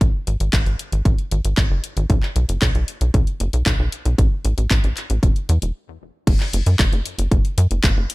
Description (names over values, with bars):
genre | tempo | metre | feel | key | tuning
italo disco | 115 BPM | 4/4 | straight | unclear | A4 = 440 Hz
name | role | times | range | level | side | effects
tight sequencer bass | bass | 0.0-8.1 s | E1 to F#2 | -19 LUFS | equal | none
electronic kick drum | drums | 0.0-7.9 s | none | -18 LUFS | equal | none
house drum kit | drums | 0.0-8.1 s | crash cymbal, handclaps, hi-hat | -25 LUFS | left 1 dB | none
room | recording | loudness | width
little or no reverb | none | -17 LUFS | side -21 dB against mid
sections
0.0-6.3 A section; 6.3-8.1 B section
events
stop 5.8-6.3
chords
none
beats
| 0.01 0.53 1.05 1.58 | 2.10 2.62 3.14 3.66 | 4.18 4.71 5.23 5.75 | 6.27 6.79 7.32 7.84